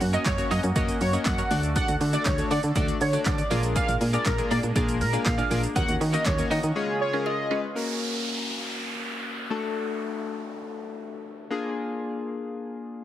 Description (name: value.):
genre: dance-pop.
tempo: 120 BPM.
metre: 4/4.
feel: straight.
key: unclear.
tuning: A4 = 441 Hz.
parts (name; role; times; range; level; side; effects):
filtered supersaw swell; sustained chords; 0.0-7.7 s; C#3 to A4; -36 LUFS; right 2 dB; sidechain pumping.
resonant blip pluck; arpeggios; 0.0-7.6 s; A3 to G#4; -38 LUFS; right 2 dB; none.
twelve-string electric guitar; riff; 0.0-6.7 s; A#3 to D5; -35 LUFS; right 4 dB; analog chorus.
solid FM bass; bass; 0.0-6.7 s; F#1 to D#3; -26 LUFS; equal; sidechain pumping.
punchy analog drum machine; drums; 0.0-6.8 s; handclaps, hi-hat, kick drum, shaker, snare drum; -28 LUFS; right 1 dB; none.
octave-doubled lead; melody; 0.1-7.6 s; A#4 to F#5; -29 LUFS; equal; chorus, phaser, sidechain pumping, tape echo.
chorused retro synth keys; accompaniment; 0.1-13.0 s; G#3 to D#5; -31 LUFS; left 4 dB; sidechain pumping.
downlifter; sound effects; 7.8-11.8 s; none; -34 LUFS; right 1 dB; none.
room: light reverb.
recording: heavily compressed radio sound, multiband compression.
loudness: -24 LUFS.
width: side -12 dB against mid.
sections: 0.0-7.8 A section; 7.8-13.0 B section.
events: drop 0.0-7.8; break 6.8-7.8.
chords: 0.0 F#; 1.5 D; 3.5 A#7; 5.8 D#m7; 6.8 C#; 7.8 F#; 9.5 D; 11.5 A#7.